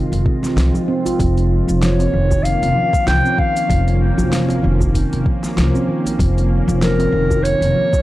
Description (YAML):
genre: organic downtempo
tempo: 96 BPM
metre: 4/4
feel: swing 56% on 16ths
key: unclear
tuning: A4 = 440 Hz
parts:
  - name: bowed-like drone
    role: sustained chords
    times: 0.0-8.0 s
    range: Eb3 to F4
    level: -26 LUFS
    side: right 1 dB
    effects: built-in reverb, vintage 12-bit sampler grit, sidechain pumping
  - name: handpan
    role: arpeggios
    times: 0.0-8.0 s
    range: C3 to F4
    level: -20 LUFS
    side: right 1 dB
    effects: analog delay
  - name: upright bass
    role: bass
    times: 0.0-7.7 s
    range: F1 to C2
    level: -18 LUFS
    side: equal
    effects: none
  - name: deep house drum kit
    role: drums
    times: 0.1-8.0 s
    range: hi-hat, shaker, snare drum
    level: -24 LUFS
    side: equal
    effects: overdrive, studio reverb
  - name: djembe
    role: percussion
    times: 0.1-8.0 s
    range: none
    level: -28 LUFS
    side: right 1 dB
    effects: none
  - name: electronic kick drum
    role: drums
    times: 0.3-8.0 s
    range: none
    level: -19 LUFS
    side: equal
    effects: overdrive, studio reverb
  - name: dark clarinet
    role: melody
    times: 1.8-8.0 s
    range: Bb4 to G5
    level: -20 LUFS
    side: left 1 dB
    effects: analog delay
room: studio ambience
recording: dry, gritty hardware recording, cassette tape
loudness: -14 LUFS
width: side -16 dB against mid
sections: 0.0-8.0 A section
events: none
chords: 0.0 Fm7; 1.2 Bbm/F